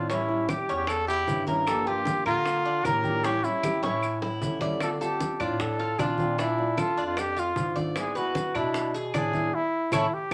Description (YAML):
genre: latin, Cuban son and guajira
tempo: 153 BPM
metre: 4/4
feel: straight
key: unclear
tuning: A4 = 440 Hz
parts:
  - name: breathy trumpet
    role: melody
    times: 0.0-10.3 s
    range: E4 to Bb4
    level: -30 LUFS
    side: equal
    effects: none
  - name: nylon-string guitar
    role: accompaniment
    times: 0.0-10.3 s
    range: D3 to G#4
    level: -37 LUFS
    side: equal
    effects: none
  - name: Cuban tres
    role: arpeggios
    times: 0.0-10.1 s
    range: Bb3 to D5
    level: -34 LUFS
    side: equal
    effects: none
  - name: mellow bass clarinet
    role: bass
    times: 0.0-10.3 s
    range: E2 to D3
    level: -36 LUFS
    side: equal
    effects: none
  - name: bongos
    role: percussion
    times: 0.1-10.3 s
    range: none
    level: -38 LUFS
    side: equal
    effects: none
  - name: congas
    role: percussion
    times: 0.1-10.3 s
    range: none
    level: -38 LUFS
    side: equal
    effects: none
  - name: maracas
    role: percussion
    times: 0.1-10.0 s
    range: none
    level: -49 LUFS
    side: equal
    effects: none
  - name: claves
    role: percussion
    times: 0.5-10.0 s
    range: none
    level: -38 LUFS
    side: equal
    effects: none
room: wet small room reverb, RT60 0.5 s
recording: none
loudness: -27 LUFS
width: mono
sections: 0.0-10.3 A section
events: drum fill 3.8-4.8; band accent 9.5-10.3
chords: 0.1 A7; 1.7 Gm7; 3.2 A7; 4.8 Dm7; 6.4 Bbmaj7; 8.0 E7/G#; 9.5 A